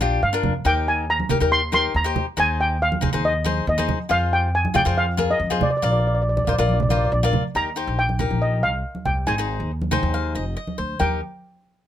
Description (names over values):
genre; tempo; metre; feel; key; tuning
calypso; 139 BPM; 4/4; straight; Eb major; A4 = 442 Hz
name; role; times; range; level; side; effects
cavaquinho; accompaniment; 0.0-11.2 s; D4 to G5; -25 LUFS; left 5 dB; none
upright bass; bass; 0.0-11.2 s; F1 to G2; -24 LUFS; equal; none
congas; percussion; 0.0-11.2 s; none; -27 LUFS; right 3 dB; none
steel pan; melody; 0.2-11.2 s; D5 to C6; -22 LUFS; equal; none
room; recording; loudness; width
light reverb; close, detailed microphones; -19 LUFS; side -11 dB against mid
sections
0.0-7.5 A section; 7.5-11.0 B section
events
cavaquinho fill 9.7-11.0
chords
0.0 Bb; 0.7 Eb; 2.4 Ab/Eb; 4.1 Fm; 5.8 Bbadd9; 7.5 Ebadd9; 9.3 Ab; 11.0 Eb